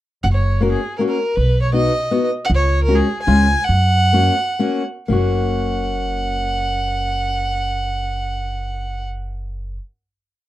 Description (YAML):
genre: alpine folk, alpine dance band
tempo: 112-160 BPM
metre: 3/4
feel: straight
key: F# major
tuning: A4 = 440 Hz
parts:
  - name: dark fiddle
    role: melody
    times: 0.2-9.1 s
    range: G#4 to G#5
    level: -21 LUFS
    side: right 2 dB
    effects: none
  - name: upright bass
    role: bass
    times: 0.2-9.8 s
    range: F#1 to F#2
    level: -19 LUFS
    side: equal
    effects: none
  - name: fingerpicked steel-string acoustic guitar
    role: accompaniment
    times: 0.6-9.8 s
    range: G#3 to F#4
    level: -20 LUFS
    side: left 3 dB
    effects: none
room: light reverb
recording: dark, warm production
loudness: -16 LUFS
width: side -14 dB against mid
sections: 0.2-5.1 A section; 5.1-8.3 final chord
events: slowing down 2.5-5.1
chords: 0.2 F#; 1.4 B; 2.5 C#sus4; 3.3 C#; 3.7 F#